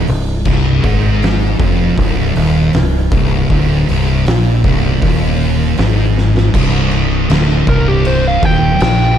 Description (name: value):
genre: stoner and doom metal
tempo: 79 BPM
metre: 4/4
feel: straight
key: C minor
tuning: A4 = 440 Hz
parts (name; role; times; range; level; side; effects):
- thick fuzz guitar; riff; 0.0-9.2 s; C2 to Bb2; -17 LUFS; left 8 dB; distortion
- thick fuzz guitar; riff; 0.0-9.2 s; C2 to Bb2; -17 LUFS; right 8 dB; distortion
- growling fingered electric bass; bass; 0.0-9.2 s; C1 to Bb1; -16 LUFS; equal; overdrive
- oversized low-tuned drum kit; drums; 0.1-9.0 s; crash cymbal, hi-hat, kick drum, snare drum; -17 LUFS; equal; none
- fuzz lead guitar; melody; 7.7-9.2 s; G4 to G5; -15 LUFS; right 1 dB; distortion, tape echo
room: light reverb, small room ambience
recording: dark, warm production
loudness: -10 LUFS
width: side -9 dB against mid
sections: 0.0-6.5 A section; 6.5-9.2 B section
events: drum fill 6.2-6.5; lead electric guitar solo 6.5-9.2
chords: 0.0 Cm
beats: | 0.47 1.23 1.99 2.74 | 3.50 4.26 5.02 5.78 | 6.53 7.29 8.05 8.80